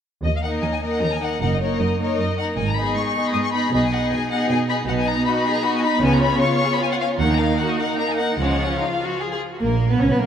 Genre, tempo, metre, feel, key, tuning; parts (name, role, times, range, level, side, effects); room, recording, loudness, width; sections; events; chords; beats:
quick classical-period movement for symphony orchestra; 154 BPM; 3/4; straight; Eb minor; A4 = 438 Hz
rich chamber violin section; melody; 0.2-10.3 s; A#3 to Eb6; -25 LUFS; left 6 dB
rich chamber double bass section; bass; 0.2-10.3 s; Gb1 to Eb2; -26 LUFS; right 3 dB
warm chamber cello section; bass; 0.2-10.3 s; Eb2 to C#4; -25 LUFS; right 2 dB
clear chamber viola section; accompaniment; 0.4-10.3 s; E#3 to E#4; -25 LUFS; right 2 dB
rich chamber violin section; second line; 0.5-10.3 s; G#3 to Eb5; -25 LUFS; left 2 dB
moderate concert hall reverb, RT60 2.3 s; -18 LUFS; side -8 dB against mid
0.2-9.6 A section
0.2 Eb5; 1.4 Ebm/Gb; 2.6 Abm; 3.7 Abm/Cb; 6.0 C#7; 7.2 D#m; 8.4 C#; 9.6 F#/A# (rootless)
| 0.24 0.63 1.02 | 1.41 1.80 2.19 | 2.57 2.96 3.34 | 3.72 4.11 4.49 | 4.87 5.26 5.64 | 6.03 6.42 6.80 | 7.20 7.59 7.99 | 8.39 8.80 9.21 | 9.61 10.01